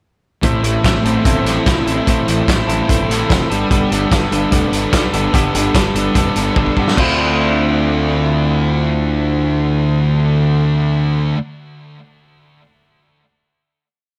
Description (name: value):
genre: indie rock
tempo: 147 BPM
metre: 4/4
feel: straight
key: D dorian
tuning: A4 = 444 Hz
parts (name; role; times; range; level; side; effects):
- thick fuzz guitar; riff; 0.4-11.4 s; A2 to A4; -21 LUFS; equal; distortion, ensemble chorus
- twelve-string electric guitar; riff; 0.4-11.4 s; A2 to A4; -21 LUFS; equal; none
- fuzz picked electric bass; bass; 0.4-11.3 s; F1 to G2; -22 LUFS; equal; overdrive
- loose indie drum kit; drums; 0.4-7.1 s; crash cymbal, hi-hat, kick drum, snare drum; -20 LUFS; equal; none
room: light reverb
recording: none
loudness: -15 LUFS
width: mono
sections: 0.4-7.0 pre-chorus; 7.0-10.2 final chord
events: drum fill 6.6-7.0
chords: 0.4 Am; 3.5 Gadd9; 7.0 Dm9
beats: | 0.43 0.84 1.25 1.66 | 2.07 2.48 2.89 3.30 | 3.71 4.11 4.52 4.93 | 5.34 5.74 6.15 6.56 | 6.97 7.38 7.79 8.20 | 8.61 9.02 9.43 9.84